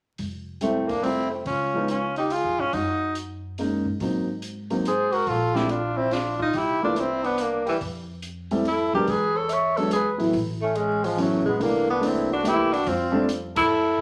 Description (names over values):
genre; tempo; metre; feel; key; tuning
jazz, small-group swing and bop; 142 BPM; 3/4; swing 66% on 8ths; unclear; A4 = 440 Hz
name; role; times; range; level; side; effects
upright bass; bass; 0.2-14.0 s; F1 to Ab2; -37 LUFS; equal; none
open jazz drum kit; drums; 0.2-13.6 s; hi-hat, kick drum, ride cymbal, snare drum; -42 LUFS; equal; none
breathy tenor saxophone; melody; 0.6-14.0 s; E3 to Db5; -26 LUFS; equal; none
growling trumpet; second line; 0.6-14.0 s; G3 to E5; -31 LUFS; equal; none
warm grand piano; accompaniment; 0.6-13.3 s; A2 to F4; -28 LUFS; equal; none
room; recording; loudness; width
wet large studio reverb, RT60 0.9 s; vinyl crackle; -24 LUFS; mono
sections
0.2-10.3 A section; 10.3-14.0 B section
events
band accent 13.5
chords
0.2 Fmaj7; 1.5 Db; 2.7 Gb6; 4.0 Ab9; 5.3 Bbmaj7; 6.5 C9; 7.8 N.C.; 9.1 E; 10.3 A6; 11.6 C13; 12.9 F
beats
| 0.19 0.62 1.04 | 1.46 1.89 2.31 | 2.73 3.16 3.58 | 4.00 4.43 4.85 | 5.27 5.69 6.12 | 6.54 6.96 7.38 | 7.81 8.23 8.65 | 9.07 9.50 9.92 | 10.34 10.76 11.18 | 11.60 12.02 12.45 | 12.87 13.29 13.71